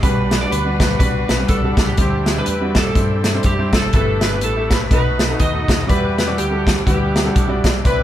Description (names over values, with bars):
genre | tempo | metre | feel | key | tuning
uptempo gospel | 123 BPM | 4/4 | swing 58% on 8ths | G major | A4 = 441 Hz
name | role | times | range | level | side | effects
bright saxophone section | melody | 0.0-8.0 s | B3 to D#5 | -26 LUFS | left 1 dB | none
electric slide guitar | melody | 0.0-8.0 s | G4 to D#5 | -24 LUFS | right 2 dB | none
bright grand piano | accompaniment | 0.0-8.0 s | G2 to D5 | -22 LUFS | equal | none
tonewheel organ | sustained chords | 0.0-8.0 s | G3 to D6 | -30 LUFS | right 1 dB | fast rotary speaker, chorus vibrato
warm studio string section | sustained chords | 0.0-8.0 s | E3 to B4 | -32 LUFS | left 2 dB | none
hollow-body short-scale fingered electric bass | bass | 0.0-8.0 s | F#1 to G2 | -23 LUFS | equal | none
natural country drum kit | drums | 0.0-8.0 s | hi-hat, kick drum, snare drum | -17 LUFS | equal | none
room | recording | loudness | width
wet studio reverb, RT60 0.5 s | band playing live in one room | -14 LUFS | side -12 dB against mid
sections
0.0-8.0 A section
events
none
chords
0.0 Gmaj7/B; 2.0 D9sus4; 3.9 G69; 4.9 B7; 5.9 Em9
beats
| 0.03 0.52 1.01 1.50 | 1.98 2.47 2.96 3.45 | 3.94 4.43 4.92 5.41 | 5.89 6.38 6.87 7.36 | 7.85